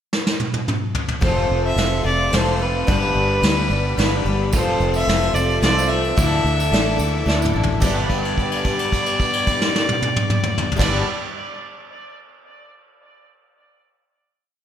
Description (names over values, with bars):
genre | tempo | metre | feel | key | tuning
folk rock and heartland rock | 109 BPM | 3/4 | straight | G mixolydian | A4 = 440 Hz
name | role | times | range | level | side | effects
soft brush drum kit | drums | 0.1-10.9 s | crash cymbal, kick drum, ride cymbal, snare drum, toms | -22 LUFS | equal | none
rich fiddle | melody | 1.2-11.0 s | B4 to E5 | -23 LUFS | equal | slapback echo, tape echo
picked twelve-string acoustic guitar | accompaniment | 1.2-11.1 s | G2 to B4 | -26 LUFS | left 4 dB | slapback echo
clear studio string section | sustained chords | 1.2-11.0 s | G3 to D6 | -33 LUFS | left 1 dB | none
electric guitar through a small old amp | riff | 1.2-11.1 s | D3 to B4 | -26 LUFS | equal | analog chorus, slapback echo
fingered electric bass | bass | 1.2-11.0 s | F1 to D2 | -22 LUFS | equal | none
clear concert grand piano | accompaniment | 4.5-11.0 s | E4 to D5 | -34 LUFS | right 2 dB | none
tambourine | percussion | 4.5-8.1 s | none | -36 LUFS | right 7 dB | none
room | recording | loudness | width
moderate scoring stage reverb, RT60 1.7 s | big arena sound | -17 LUFS | side -9 dB against mid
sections
0.0-1.2 pickup bar; 1.2-7.8 pre-chorus; 7.8-11.1 final chord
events
drum fill 0.1-1.2, 7.3-7.8; held note 7.8-10.8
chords
0.0 N.C.; 1.2 F; 2.9 G; 4.5 F; 6.2 Dsus2; 7.8 G